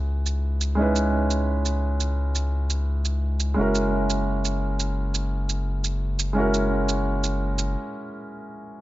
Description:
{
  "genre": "liquid drum and bass",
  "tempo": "172 BPM",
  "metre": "4/4",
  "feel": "straight",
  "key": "unclear",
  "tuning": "A4 = 441 Hz",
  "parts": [
    { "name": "warm grand piano", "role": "accompaniment", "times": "0.0-8.8 s", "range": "G#3 to B4", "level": "-26 LUFS", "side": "right 1 dB", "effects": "analog delay" },
    { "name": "saturated sub bass", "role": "bass", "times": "0.0-7.8 s", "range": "F#1 to C#2", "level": "-24 LUFS", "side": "equal", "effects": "none" },
    { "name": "shaker", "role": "drums", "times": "0.3-7.7 s", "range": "none", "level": "-30 LUFS", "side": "right 6 dB", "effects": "overdrive" }
  ],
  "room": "moderate spring reverb, RT60 2.2 s",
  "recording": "echo-heavy mix, nothing above 7.7 kHz",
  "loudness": "-22 LUFS",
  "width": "side -16 dB against mid",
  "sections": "0.0-8.8 A section",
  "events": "break 7.8-8.8",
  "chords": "0.0 C#m9; 3.6 F#9"
}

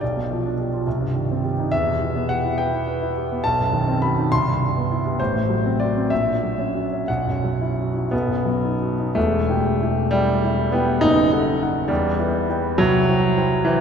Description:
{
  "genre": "classical, romantic character piece for solo piano",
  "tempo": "56-72 BPM (dotted quarters)",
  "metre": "6/8",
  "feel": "rubato",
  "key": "E minor",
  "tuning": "A4 = 441 Hz",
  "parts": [
    { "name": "warm concert grand piano", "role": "solo", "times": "0.0-13.8 s", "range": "E1 to C6", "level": "-18 LUFS", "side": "equal", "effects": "none" }
  ],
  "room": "wet church reverb, RT60 3.5 s",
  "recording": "none",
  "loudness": "-18 LUFS",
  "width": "side -7 dB against mid",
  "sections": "0.0-9.2 A section; 9.2-13.8 B section",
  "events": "none",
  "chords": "0.0 G7/B; 0.9 Cm; 1.7 Em; 3.4 B7b9; 4.3 Cmaj7; 5.2 F#dim/A; 6.1 F#7/A#; 7.1 Bsus4; 8.1 B; 9.2 Em; 11.0 D#dim/F#; 11.9 Em; 12.8 C"
}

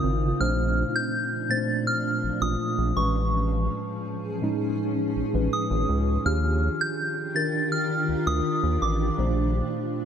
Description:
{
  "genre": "contemporary R&B",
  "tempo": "82 BPM",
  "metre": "4/4",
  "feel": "straight",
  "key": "Bb major",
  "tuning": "A4 = 440 Hz",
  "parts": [
    { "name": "soft synth bell", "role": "melody", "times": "0.0-9.9 s", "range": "C#6 to A6", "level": "-28 LUFS", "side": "equal", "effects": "chorus, digital delay" },
    { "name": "mellow tine electric piano", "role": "accompaniment", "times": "0.0-10.1 s", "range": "A2 to F5", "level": "-28 LUFS", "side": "right 1 dB", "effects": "medium stereo tremolo" },
    { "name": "granular cloud pad", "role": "sustained chords", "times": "0.0-10.1 s", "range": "Bb2 to G#4", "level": "-31 LUFS", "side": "equal", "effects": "built-in reverb" },
    { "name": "round analog bass", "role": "bass", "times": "0.0-9.6 s", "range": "Ab1 to Eb2", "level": "-25 LUFS", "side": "equal", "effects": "none" }
  ],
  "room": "light reverb",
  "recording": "none",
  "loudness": "-23 LUFS",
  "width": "side -8 dB against mid",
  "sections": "0.0-10.1 A section",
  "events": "none",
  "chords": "0.4 Bbmaj9; 3.0 Amaj9; 6.2 Ebmaj9; 9.2 Bbmaj9"
}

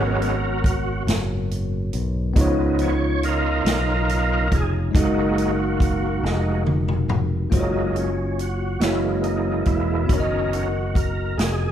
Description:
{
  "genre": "slow gospel",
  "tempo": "46 BPM (dotted quarters)",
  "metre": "6/8",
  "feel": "straight",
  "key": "F# major",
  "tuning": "A4 = 440 Hz",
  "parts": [
    { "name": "bell-like tine electric piano", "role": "accompaniment", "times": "0.0-11.7 s", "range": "G#2 to D#5", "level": "-25 LUFS", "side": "left 2 dB", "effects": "medium stereo tremolo" },
    { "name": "overdriven tonewheel organ", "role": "sustained chords", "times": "0.0-11.7 s", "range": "D#3 to C#5", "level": "-25 LUFS", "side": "right 4 dB", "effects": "slow rotary speaker, chorus vibrato" },
    { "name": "fingered electric bass", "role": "bass", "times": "0.0-11.7 s", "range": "E1 to C#2", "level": "-24 LUFS", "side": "equal", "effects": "none" },
    { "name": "swinging big-band drum kit", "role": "drums", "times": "0.2-11.6 s", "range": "hi-hat, kick drum, snare drum, toms", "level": "-23 LUFS", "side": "equal", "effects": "none" }
  ],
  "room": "moderate recital hall reverb, RT60 1.6 s",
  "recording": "recorded in a church or concert hall",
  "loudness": "-19 LUFS",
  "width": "side -10 dB against mid",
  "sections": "0.0-7.5 A section; 7.5-11.7 B section",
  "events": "tonewheel organ solo 0.0-7.5, 7.5-11.7; drum fill 6.2-7.5",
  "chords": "0.0 G#m11; 2.4 C#9; 4.9 F#69; 7.5 F#maj7; 8.8 F#7; 10.1 Bmaj7/F#"
}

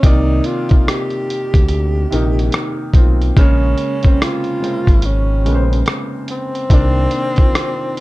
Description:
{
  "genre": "lo-fi hip hop",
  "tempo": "72 BPM",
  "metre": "4/4",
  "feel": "swing 61% on 16ths",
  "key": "unclear",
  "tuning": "A4 = 440 Hz",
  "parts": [
    { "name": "breathy tenor saxophone", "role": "melody", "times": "0.0-8.0 s", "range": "C4 to G4", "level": "-21 LUFS", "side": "right 1 dB", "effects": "none" },
    { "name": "warm upright piano", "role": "accompaniment", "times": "0.0-8.0 s", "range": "C3 to D5", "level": "-21 LUFS", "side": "left 1 dB", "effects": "none" },
    { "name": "smooth synth bass", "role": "bass", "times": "0.0-7.1 s", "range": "Ab1 to D2", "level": "-16 LUFS", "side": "equal", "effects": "none" },
    { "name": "lo-fi sampler-style drum kit", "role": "drums", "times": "0.0-8.0 s", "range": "hi-hat, kick drum, rim click", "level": "-13 LUFS", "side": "equal", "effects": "none" }
  ],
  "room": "little or no reverb",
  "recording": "none",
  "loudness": "-13 LUFS",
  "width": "side -19 dB against mid",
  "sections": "0.0-8.0 A section",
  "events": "none",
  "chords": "0.0 Cm9; 3.4 Bbm9; 6.7 Cm9"
}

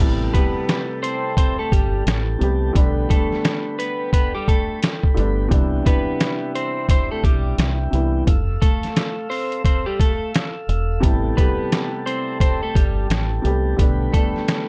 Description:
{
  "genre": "hip hop, boom-bap hip-hop",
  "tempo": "87 BPM",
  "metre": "4/4",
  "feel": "swing 61% on 16ths",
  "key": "A minor",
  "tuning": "A4 = 440 Hz",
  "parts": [
    { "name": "dark baby grand piano", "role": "accompaniment", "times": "0.0-14.7 s", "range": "C3 to G4", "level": "-28 LUFS", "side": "equal", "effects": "cassette tape, high-pass filter, low-pass filter" },
    { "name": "mellow tonewheel organ", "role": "sustained chords", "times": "0.0-14.7 s", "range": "G4 to E6", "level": "-33 LUFS", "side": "equal", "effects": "slow rotary speaker, high-pass filter, low-pass filter" },
    { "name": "deep dub fingered electric bass", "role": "bass", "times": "0.0-14.1 s", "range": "E1 to C2", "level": "-23 LUFS", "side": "equal", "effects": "none" },
    { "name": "trip hop sampler-style drum kit", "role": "drums", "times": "0.0-14.7 s", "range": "crash cymbal, hi-hat, kick drum, snare drum", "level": "-21 LUFS", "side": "equal", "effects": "none" },
    { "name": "clean electric guitar", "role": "melody", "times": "0.3-14.7 s", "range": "G3 to C5", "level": "-28 LUFS", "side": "equal", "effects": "high-pass filter, low-pass filter, slapback echo" }
  ],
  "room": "light reverb",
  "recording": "dark, warm production",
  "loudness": "-20 LUFS",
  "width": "mono",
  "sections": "0.0-14.7 A section",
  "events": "none",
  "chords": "0.0 Am7; 2.8 Gadd9/B; 5.5 Cmaj7; 8.3 Fmaj7; 11.0 Am7; 13.8 Gadd9/B"
}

